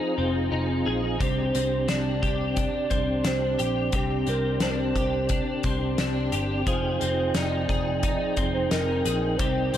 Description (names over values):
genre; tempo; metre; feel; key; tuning
dream pop; 88 BPM; 4/4; straight; unclear; A4 = 440 Hz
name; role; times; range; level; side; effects
hollow clarinet-like synth lead; melody; 0.0-9.8 s; G4 to D5; -30 LUFS; right 2 dB; chorus, tape echo
mellow tonewheel organ; sustained chords; 0.0-9.8 s; F3 to G5; -30 LUFS; right 2 dB; chorus vibrato, wide subtle chorus
twelve-string electric guitar; arpeggios; 0.0-9.8 s; C3 to Ab4; -29 LUFS; left 3 dB; ensemble chorus, tape echo
vintage muted picked electric bass; bass; 0.2-9.8 s; F1 to C2; -30 LUFS; equal; none
loose indie drum kit; drums; 1.2-9.8 s; hi-hat, kick drum, snare drum; -29 LUFS; equal; none
room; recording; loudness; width
light reverb, small room ambience; none; -23 LUFS; side -10 dB against mid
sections
0.0-9.8 A section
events
none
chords
0.0 Fm7; 1.2 Csus2; 6.7 Fm7